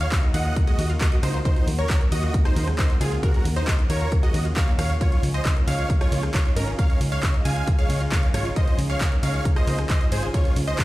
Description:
uplifting trance; 135 BPM; 4/4; straight; A4 = 440 Hz
big supersaw lead; melody; 0.0-10.8 s; Db4 to Ab5; -30 LUFS; right 1 dB; sidechain pumping, digital delay
wide unison pluck; second line; 0.0-10.8 s; Ab4 to Ab5; -35 LUFS; equal; sidechain pumping, digital delay
lush unison pad; sustained chords; 0.0-10.8 s; Db3 to Ab4; -35 LUFS; equal; chorus, sidechain pumping
solid FM bass; bass; 0.0-10.7 s; Ab1 to Eb2; -24 LUFS; equal; tube saturation, sidechain pumping
punchy analog drum machine; drums; 0.0-10.8 s; handclaps, hi-hat, ride cymbal, rim click; -32 LUFS; equal; overdrive, sidechain pumping on hats, sidechain pumping on cymbals
downlifter; sound effects; 0.0-1.5 s; -46 LUFS; left 1 dB
electronic kick drum; drums; 0.1-10.8 s; -21 LUFS; equal
analog pluck; arpeggios; 0.2-10.4 s; Bb2 to Bb4; -36 LUFS; left 2 dB; chorus, cassette tape, sidechain pumping, digital delay
little or no reverb; played on a big sound system in a bare room, stone room reverb; -19 LUFS; side -17 dB against mid
0.0-10.8 A section
0.0 Ebm; 5.0 Dbadd9
0.12 0.56 1.01 | 1.45 1.90 2.34 2.79 | 3.23 3.67 4.12 4.56 | 5.01 5.45 5.90 6.34 | 6.79 7.23 7.67 8.12 | 8.56 9.01 9.45 9.90 | 10.34 10.79

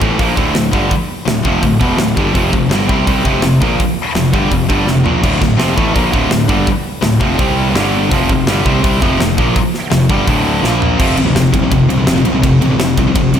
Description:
heavy metal; 167 BPM; 4/4; straight; A4 = 440 Hz
heavy high-gain guitar; riff; 0.0-13.4 s; D2 to C4; -16 LUFS; left 7 dB; distortion
high-gain distorted guitar; riff; 0.0-13.4 s; D2 to C4; -16 LUFS; right 7 dB; distortion, slapback echo
fuzz picked electric bass; bass; 0.0-13.4 s; D1 to C2; -18 LUFS; equal; overdrive
tight metal drum kit; drums; 0.0-13.4 s; crash cymbal, hi-hat, kick drum, ride cymbal, snare drum, toms; -17 LUFS; equal
moderate lush hall reverb, RT60 1.7 s, small room ambience; big arena sound; -11 LUFS; side -9 dB against mid
0.0-11.0 A section; 11.0-13.4 B section
drum fill 4.9-5.2, 10.6-11.0
0.0 Dm; 2.4 F5; 5.2 Dm; 7.4 C5; 7.8 G5; 8.1 F5; 10.3 D5; 10.6 Bb5; 11.0 F
0.20 0.56 | 0.92 1.27 1.64 2.00 | 2.35 2.71 3.08 3.44 | 3.80 4.16 4.52 4.88 | 5.24 5.60 5.96 6.32 | 6.68 7.04 7.40 7.76 | 8.12 8.48 8.84 9.20 | 9.56 9.92 10.28 10.64 | 11.00 11.36 11.72 12.08 | 12.44 12.80 13.16

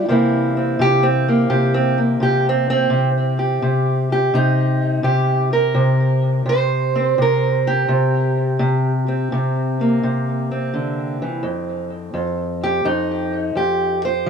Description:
acoustic country blues, solo or duo; 85 BPM; 4/4; swing 67% on 8ths; C mixolydian; A4 = 440 Hz
fingerpicked steel-string acoustic guitar; solo; 0.0-14.3 s; F2 to C5; -16 LUFS; equal; tape echo
moderate studio reverb, RT60 0.6 s; dark, warm production; -16 LUFS; side -6 dB against mid
0.1-14.3 A section
steel-string acoustic guitar solo 0.1-14.3
0.1 C7; 11.4 F7(no3)
| 0.08 0.79 1.50 2.21 | 2.92 3.63 4.34 5.05 | 5.76 6.46 7.17 7.88 | 8.59 9.30 10.01 10.72 | 11.43 12.14 12.85 13.56 | 14.27

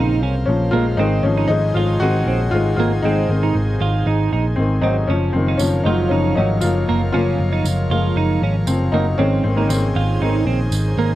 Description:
piano-driven pop; 117 BPM; 4/4; straight; A4 = 442 Hz
warm upright piano; accompaniment; 0.0-11.2 s; Db3 to Gb4; -20 LUFS; left 3 dB
airy breathy pad; sustained chords; 0.0-11.2 s; Db3 to Ab5; -27 LUFS; equal; chorus
twelve-string electric guitar; riff; 0.0-11.1 s; Bb3 to F4; -22 LUFS; right 7 dB
vintage muted picked electric bass; bass; 0.0-11.2 s; Gb1 to C2; -19 LUFS; equal
tambourine; percussion; 5.6-10.8 s; -30 LUFS; right 7 dB
studio ambience; dry, close 1970s-style studio recording; -16 LUFS; side -14 dB against mid
0.0-11.2 A section
upright piano solo 0.0-11.2
0.0 Bbmadd9; 1.0 Ab; 5.1 Gbmaj7; 9.2 Ab
0.48 | 0.99 1.50 2.02 2.53 | 3.04 3.55 4.07 4.58 | 5.09 5.60 6.12 6.63 | 7.14 7.65 8.17 8.68 | 9.19 9.70 10.22 10.73

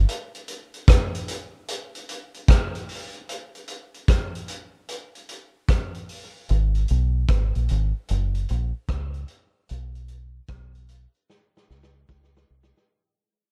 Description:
dub reggae; 75 BPM; 4/4; swing 63% on 16ths; A4 = 440 Hz
deep dub fingered electric bass; bass; 0.0, 6.5-12.7 s; F#1 to C#2; -25 LUFS; equal
vintage drum kit; drums; 0.1-13.0 s; hi-hat, kick drum, rim click, snare drum; -24 LUFS; equal
little or no reverb; dark, warm production; -24 LUFS; mono
0.1-12.9 A section
break 0.1-6.5; fade-out 1.4-12.9; drum fill 11.3-12.9
| 0.08 0.88 1.68 2.48 | 3.28 4.08 4.88 5.68 | 6.48 7.28 8.08 8.88 | 9.68 10.48 11.29 12.09

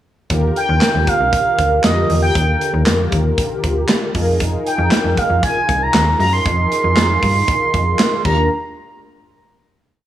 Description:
early-eighties boogie funk; 117 BPM; 4/4; straight; Eb major; A4 = 442 Hz
mellow synth brass; accompaniment; 0.3-8.5 s; D3 to Bb4; -21 LUFS; left 2 dB; chorus, phaser
slap-like FM bass; bass; 0.3-8.5 s; C2 to G2; -18 LUFS; equal
modern studio drum kit; drums; 0.3-8.4 s; crash cymbal, handclaps, hi-hat, kick drum, snare drum; -19 LUFS; right 1 dB; gated reverb
expressive synth lead; melody; 0.6-8.5 s; Eb5 to C6; -17 LUFS; right 2 dB; chorus
light reverb, studio reverb; -13 LUFS; side -12 dB against mid
0.3-8.5 verse; 8.5-10.1 final hit
0.3 Ebmaj9; 4.1 Fm11; 8.2 Ebmaj9; 8.5 N.C.
| 0.30 0.81 1.33 1.84 | 2.35 2.87 3.38 3.89 | 4.40 4.92 5.43 5.94 | 6.46 6.97 7.48 7.99

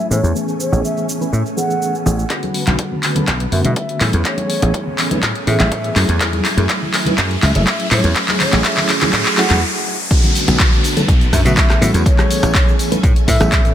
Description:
filtered disco house; 123 BPM; 4/4; straight; A major; A4 = 440 Hz
mellow hollow concert flute; melody; 0.0-13.7 s; C#5 to F#5; -25 LUFS; left 1 dB; sidechain pumping, low-pass filter, dub echo
mellow reed electric piano; accompaniment; 0.0-13.7 s; D3 to B4; -21 LUFS; right 1 dB; fast tremolo, phaser, sidechain pumping, low-pass filter, dub echo
string machine, full ensemble; sustained chords; 0.0-13.7 s; D3 to A5; -26 LUFS; equal; ensemble chorus, vintage 12-bit sampler grit, sidechain pumping, low-pass filter
house drum kit; drums; 0.0-13.7 s; cabasa, crash cymbal, handclaps, hi-hat, rim click; -19 LUFS; equal; sidechain pumping on perc, sidechain pumping on hats, sidechain pumping on cymbals
dry thumbed slap bass; bass; 0.1-13.7 s; F#1 to B2; -16 LUFS; equal; tube saturation, sidechain pumping, low-pass filter
electronic kick drum; drums; 2.3-13.6 s; -15 LUFS; equal; high-pass filter on kick
tambourine and congas; percussion; 2.3-13.6 s; -25 LUFS; left 1 dB; sidechain pumping on perc, low-pass filter on perc, dub echo
riser, noise sweep and downlifter; sound effects; 3.8-13.7 s; -25 LUFS; equal
light reverb; echo-heavy mix; -13 LUFS; side -10 dB against mid
0.0-2.3 A section; 2.3-10.1 B section; 10.1-13.7 C section
build-up 2.3-10.1; drum fill 2.3-9.6; filter sweep 2.3-10.1; riser 3.8-10.1; noise sweep 8.2-10.1; stop 9.6-10.1; drop 10.1-13.7
0.1 Amaj7; 2.3 Bm7; 4.0 Amaj7; 6.0 F#m9; 7.9 Amaj7; 10.1 Bm7; 11.8 Amaj7
| 0.35 0.84 1.33 1.82 | 2.30 2.79 3.28 3.77 | 4.25 4.74 5.23 5.72 | 6.21 6.69 7.18 7.67 | 8.16 8.64 9.13 9.62 | 10.11 10.60 11.08 11.57 | 12.06 12.55 13.04 13.52

